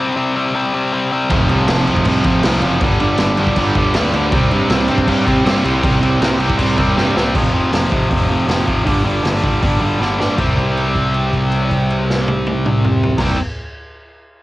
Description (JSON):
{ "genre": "punk rock", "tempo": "159 BPM", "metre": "4/4", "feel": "straight", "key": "unclear", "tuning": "A4 = 440 Hz", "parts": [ { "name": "tight distorted guitar", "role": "riff", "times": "0.0-13.4 s", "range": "F2 to C4", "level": "-18 LUFS", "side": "left 2 dB", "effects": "distortion" }, { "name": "distorted electric guitar", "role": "riff", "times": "1.3-13.4 s", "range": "F2 to C4", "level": "-22 LUFS", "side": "right 5 dB", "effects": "distortion" }, { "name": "thick fuzz guitar", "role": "riff", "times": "1.3-7.3 s", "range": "F2 to C4", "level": "-22 LUFS", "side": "right 2 dB", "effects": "distortion" }, { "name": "fuzz picked electric bass", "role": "bass", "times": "1.3-13.3 s", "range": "F1 to C3", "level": "-20 LUFS", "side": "equal", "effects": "overdrive" }, { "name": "raw garage drum kit", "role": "drums", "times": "1.3-13.3 s", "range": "crash cymbal, hi-hat, kick drum, snare drum, toms", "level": "-18 LUFS", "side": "equal", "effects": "cassette tape" } ], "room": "light reverb", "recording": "home recording on cassette", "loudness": "-13 LUFS", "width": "side -17 dB against mid", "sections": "0.0-7.3 A section; 7.3-10.4 B section; 10.4-13.4 C section", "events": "drum fill 7.0-7.3, 10.0-10.4; held note 10.4-13.2", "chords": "0.0 C5; 1.3 F5; 2.8 G5; 4.3 C5; 7.3 F5; 8.9 G5; 10.4 C5", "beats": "0.17 0.54 0.92 | 1.30 1.68 2.06 2.43 | 2.81 3.19 3.57 3.95 | 4.32 4.70 5.08 5.46 | 5.83 6.21 6.59 6.97 | 7.35 7.73 8.11 8.48 | 8.86 9.24 9.62 10.00 | 10.38 10.76 11.14 11.52 | 11.90 12.28 12.66 13.04" }